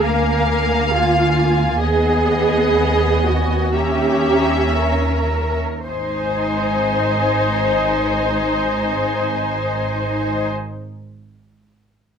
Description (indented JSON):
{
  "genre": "classical, slow romantic movement for string orchestra",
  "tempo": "52-69 BPM",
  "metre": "4/4",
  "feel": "rubato",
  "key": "unclear",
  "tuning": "A4 = 442 Hz",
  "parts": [
    { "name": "muted symphonic violin section", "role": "melody", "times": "0.0-10.5 s", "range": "G#5 to A#5", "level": "-26 LUFS", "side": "left 2 dB", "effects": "none" },
    { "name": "muted symphonic violin section", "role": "second line", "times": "0.0-10.5 s", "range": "B#4 to E#5", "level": "-24 LUFS", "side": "left 2 dB", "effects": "none" },
    { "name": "muted symphonic viola section", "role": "accompaniment", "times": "0.0-10.5 s", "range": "A#3 to D#4", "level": "-22 LUFS", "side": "left 2 dB", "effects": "none" },
    { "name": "muted studio cello section", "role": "bass", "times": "0.0-10.5 s", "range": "E#4 to B#4", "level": "-21 LUFS", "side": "right 2 dB", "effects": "none" },
    { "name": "muted symphonic double bass section", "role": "bass", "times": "0.0-10.5 s", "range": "G#1 to D#2", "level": "-22 LUFS", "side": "right 1 dB", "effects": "none" }
  ],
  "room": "light reverb",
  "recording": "none",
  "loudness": "-16 LUFS",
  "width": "side -7 dB against mid",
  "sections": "0.0-5.9 A section; 5.9-10.2 B section",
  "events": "slowing down 0.0-5.9",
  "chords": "0.0 A#7/D; 1.8 G#m/D#; 3.7 D#7b9; 5.9 G#"
}